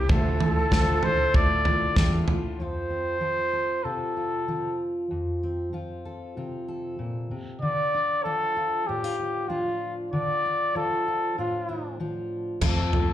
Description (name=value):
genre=indie folk with a building arrangement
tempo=96 BPM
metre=4/4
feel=straight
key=F major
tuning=A4 = 440 Hz
part: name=bright reedy bansuri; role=second line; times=0.0-2.3 s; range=G4 to A4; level=-30 LUFS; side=right 2 dB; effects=slapback echo
part: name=bright upright piano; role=accompaniment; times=0.0-2.6 s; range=D2 to G5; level=-35 LUFS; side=left 1 dB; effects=slapback echo
part: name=picked steel-string acoustic guitar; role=accompaniment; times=0.0-2.6, 12.6-13.1 s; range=F2 to F4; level=-33 LUFS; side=left 5 dB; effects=slapback echo
part: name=fingered electric bass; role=bass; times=0.0-2.2, 12.6-13.1 s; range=D2 to F2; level=-25 LUFS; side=right 1 dB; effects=none
part: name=loose indie drum kit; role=drums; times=0.1-2.4, 12.6-13.1 s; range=crash cymbal, kick drum, snare drum, toms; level=-25 LUFS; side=right 1 dB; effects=none
part: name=mellow trumpet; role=melody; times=0.4-13.1 s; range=F4 to D5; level=-26 LUFS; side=left 1 dB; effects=slapback echo
part: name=fingerpicked steel-string acoustic guitar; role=accompaniment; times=2.6-13.1 s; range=F2 to A4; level=-31 LUFS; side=equal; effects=none
room=light reverb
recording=live gig heard through the venue's PA, club reverb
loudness=-24 LUFS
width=side -12 dB against mid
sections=0.0-2.6 A section; 2.6-12.6 B section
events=drum fill 12.6-13.1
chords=0.1 Dmadd9; 2.6 F; 7.6 Dm; 12.6 F